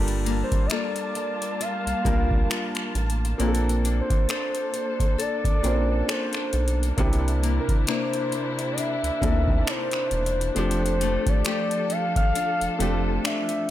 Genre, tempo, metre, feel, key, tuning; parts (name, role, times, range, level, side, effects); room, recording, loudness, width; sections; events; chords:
contemporary R&B; 67 BPM; 4/4; swing 58% on 16ths; F major; A4 = 441 Hz
felt-muted upright piano; accompaniment; 0.0-13.7 s; G3 to C5; -31 LUFS; right 2 dB
muted symphonic string section; sustained chords; 0.0-13.7 s; C3 to A5; -33 LUFS; left 1 dB
nylon-string guitar; arpeggios; 0.0-13.7 s; C3 to C5; -31 LUFS; left 8 dB
rubbery square bass; bass; 0.0-13.2 s; E1 to D2; -25 LUFS; equal
booming analog drum machine; drums; 0.1-13.7 s; finger snaps, hi-hat, kick drum; -26 LUFS; equal
gliding portamento lead; melody; 0.4-13.7 s; Bb4 to F5; -28 LUFS; equal; chorus, ping-pong delay
digital ambience; -22 LUFS; side -13 dB against mid
0.0-13.7 A section
kick muted 12.3-13.7
0.0 Gm9; 3.4 Bbmaj9; 7.0 C9; 10.6 F69